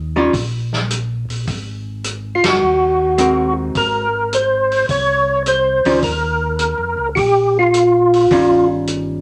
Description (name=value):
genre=soul jazz organ trio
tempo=105 BPM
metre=4/4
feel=swing 69% on 8ths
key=Eb mixolydian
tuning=A4 = 444 Hz
part: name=mellow tonewheel organ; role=bass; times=0.0-9.2 s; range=Gb1 to F2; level=-27 LUFS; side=equal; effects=slow rotary speaker
part: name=archtop guitar, miked and amplified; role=accompaniment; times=0.2-9.2 s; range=Eb3 to Bb4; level=-20 LUFS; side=equal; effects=none
part: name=vintage drum kit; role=drums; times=0.3-9.1 s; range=hi-hat, kick drum, ride cymbal, snare drum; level=-26 LUFS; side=equal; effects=none
part: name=percussive tonewheel organ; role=melody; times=2.4-8.7 s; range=F4 to Db5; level=-16 LUFS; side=equal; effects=slow rotary speaker, chorus vibrato
room=wet studio reverb, RT60 0.8 s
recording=none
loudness=-16 LUFS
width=mono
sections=0.0-9.2 A section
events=band accent 2.3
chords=0.0 Eb5; 1.5 Ab9; 6.0 Eb9